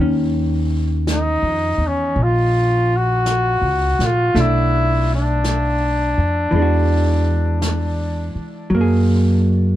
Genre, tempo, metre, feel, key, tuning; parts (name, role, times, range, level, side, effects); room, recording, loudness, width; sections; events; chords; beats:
jazz ballad; 55 BPM; 4/4; swing 68% on 8ths; A4 = 442 Hz
vintage hollow-body jazz guitar; accompaniment; 0.0-9.8 s; Eb3 to Ab4; -21 LUFS; right 1 dB
upright bass; bass; 0.0-9.8 s; Bb1 to Gb2; -18 LUFS; equal
warm trumpet; melody; 1.1-8.3 s; Db4 to Gb4; -20 LUFS; left 1 dB; tape echo
jazz brush drum kit; drums; 1.1-9.8 s; brushed snare drum, hi-hat, snare drum; -30 LUFS; equal
little or no reverb; -15 LUFS; side -13 dB against mid
0.0-9.8 A section
0.0 Ebm9; 4.3 Bm7; 6.5 E9; 8.7 Gbadd9
1.07 2.16 3.25 | 4.34 5.43 6.52 7.61 | 8.70